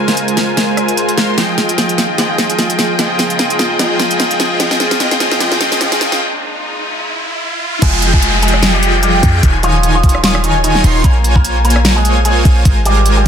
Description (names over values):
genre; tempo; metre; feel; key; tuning
future bass; 149 BPM; 4/4; swing 56% on 16ths, half-time; F minor; A4 = 444 Hz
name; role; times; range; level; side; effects
warm chamber string section; sustained chords; 0.0-7.8 s; Db3 to F4; -26 LUFS; left 2 dB; sidechain pumping
big bright polysynth; riff; 0.0-13.3 s; Eb3 to C6; -15 LUFS; equal; sidechain pumping, dub echo
warm 808-style bass; bass; 0.0-13.3 s; Eb1 to Ab2; -14 LUFS; equal; sidechain pumping, high-pass filter
pop drum kit; drums; 0.1-13.3 s; crash cymbal, hi-hat, rim click, snare drum; -16 LUFS; equal; none
riser and downlifter; sound effects; 3.6-11.0 s; none; -20 LUFS; left 1 dB; none
electric guitar with an envelope filter; melody; 7.8-13.3 s; Eb3 to Bb4; -18 LUFS; equal; sidechain pumping, dub echo
airy dreamy lead; arpeggios; 7.8-13.3 s; G5 to C6; -23 LUFS; left 1 dB; chorus, sidechain pumping, dub echo
electronic kick drum; drums; 7.8-13.3 s; none; -11 LUFS; equal; none
room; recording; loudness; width
moderate digital room reverb, RT60 1.0 s; dense, heavily limited modern master, high-pass filter; -10 LUFS; side -8 dB against mid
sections
0.0-7.8 A section; 7.8-13.3 B section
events
build-up 0.0-7.8; drum fill 0.0-6.2; filter sweep on analog polysynth 0.0-7.8; riser 3.6-7.8; break 6.2-7.8; drop 7.8-13.3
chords
0.0 Ab69; 1.4 Fm9; 3.0 Eb9sus4; 4.6 Bbm9; 6.2 Ab69; 7.8 Fm9; 9.4 Eb9sus4; 11.0 Bbm9; 12.7 Ab69